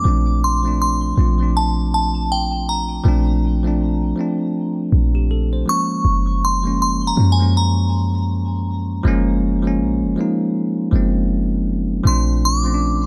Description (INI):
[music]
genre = contemporary R&B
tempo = 80 BPM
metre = 4/4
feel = swing 58% on 16ths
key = Bb major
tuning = A4 = 440 Hz
[part]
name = glassy synth bell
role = melody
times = 0.0-13.1 s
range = G5 to D6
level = -25 LUFS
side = equal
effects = chorus, phaser, dub echo
[part]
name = bell-like tine electric piano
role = accompaniment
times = 0.0-13.1 s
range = F3 to C5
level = -23 LUFS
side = equal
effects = none
[part]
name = clean 808-style bass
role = bass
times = 0.1-13.1 s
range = Gb1 to Gb2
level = -20 LUFS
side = equal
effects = none
[sound]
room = little or no reverb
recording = echo-heavy mix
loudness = -18 LUFS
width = mono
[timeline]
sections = 0.0-12.0 A section; 12.0-13.1 B section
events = none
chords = 0.0 Bbmaj9; 5.7 Gbmaj9; 12.0 Bbmaj9